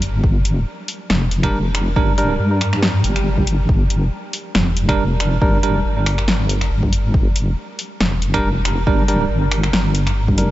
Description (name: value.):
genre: deep dubstep.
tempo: 139 BPM.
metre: 4/4.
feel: swing 55% on 16ths, half-time.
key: G minor.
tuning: A4 = 441 Hz.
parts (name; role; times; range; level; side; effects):
deep soft wobble bass; bass; 0.0-10.5 s; F1 to G2; -18 LUFS; equal; chorus.
deep house drum kit; drums; 0.0-10.5 s; finger snaps, hi-hat, snare drum; -23 LUFS; equal; overdrive.
electronic kick drum; drums; 0.2-10.4 s; none; -18 LUFS; equal; overdrive.
bell-like tine electric piano; stabs; 1.4-10.5 s; G3 to Bb4; -23 LUFS; right 2 dB; medium stereo tremolo, dub echo.
swell; sound effects; 3.0-3.7 s; none; -32 LUFS; right 2 dB; none.
room: light reverb, digital ambience.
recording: nothing above 7.8 kHz.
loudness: -15 LUFS.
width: side -15 dB against mid.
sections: 0.0-10.5 A section.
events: swell 3.0-3.7.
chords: 0.0 Gm.